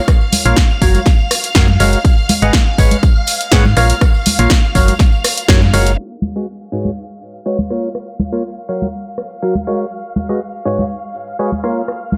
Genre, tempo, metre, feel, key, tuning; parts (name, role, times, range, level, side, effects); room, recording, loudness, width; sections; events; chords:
piano house; 122 BPM; 4/4; straight; A4 = 440 Hz
string machine, violins; sustained chords; 0.0-12.2 s; E#5; -28 LUFS; equal; ensemble chorus, sidechain pumping
electronic kick drum; drums; 0.1-5.6 s; -14 LUFS; equal
punchy analog drum machine; drums; 0.1-12.0 s; hi-hat, rim click, snare drum; -20 LUFS; equal; low-pass filter on hats, low-pass filter on snare, low-pass filter on room
tambourine and congas; percussion; 0.1-12.2 s; -24 LUFS; equal
percussive organ stab; riff; 0.5-11.8 s; G#2 to F#5; -21 LUFS; equal; lush chorus, sidechain pumping, tape echo
solid FM bass; bass; 0.5-6.0 s; F#1 to G#2; -16 LUFS; equal; tube saturation, sidechain pumping
little or no reverb; low-pass filter; -14 LUFS; mono
0.0-6.0 A section; 6.0-12.2 B section
band accent 5.5; filter sweep on string machine 6.0-12.2; filter sweep 6.0-12.2
0.0 A#m; 0.8 F#maj7; 2.0 G#m7; 2.8 C#7sus4/G#; 3.8 A#m; 4.8 F#maj7; 6.0 G#m7; 6.7 C#7sus4/G#; 7.7 A#m; 8.7 F#maj7; 9.9 G#m7; 10.7 C#7sus4/G#; 11.6 A#m